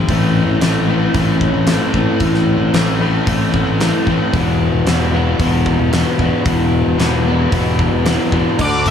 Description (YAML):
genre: classic rock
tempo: 113 BPM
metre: 4/4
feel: straight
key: unclear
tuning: A4 = 440 Hz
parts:
  - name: crunchy overdriven guitar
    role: riff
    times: 0.0-8.9 s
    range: E2 to D4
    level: -19 LUFS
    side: left 5 dB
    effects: none
  - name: modern bright fingered electric bass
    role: bass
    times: 0.0-8.9 s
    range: E1 to D2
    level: -17 LUFS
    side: left 2 dB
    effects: none
  - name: raw garage guitar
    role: riff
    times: 0.1-8.9 s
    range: E2 to A4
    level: -20 LUFS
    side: right 5 dB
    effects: overdrive
  - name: huge arena drum kit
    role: drums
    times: 0.1-8.9 s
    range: crash cymbal, hi-hat, kick drum, snare drum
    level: -20 LUFS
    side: equal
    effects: none
  - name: octave-fuzz lead guitar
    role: melody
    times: 8.6-8.9 s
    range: D5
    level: -16 LUFS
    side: left 1 dB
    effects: distortion
  - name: cowbell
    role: percussion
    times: 8.6-8.7 s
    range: none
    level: -31 LUFS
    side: right 5 dB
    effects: none
room: little or no reverb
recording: none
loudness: -13 LUFS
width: side -8 dB against mid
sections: 0.0-8.6 A section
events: none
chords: 0.1 Am; 4.3 Em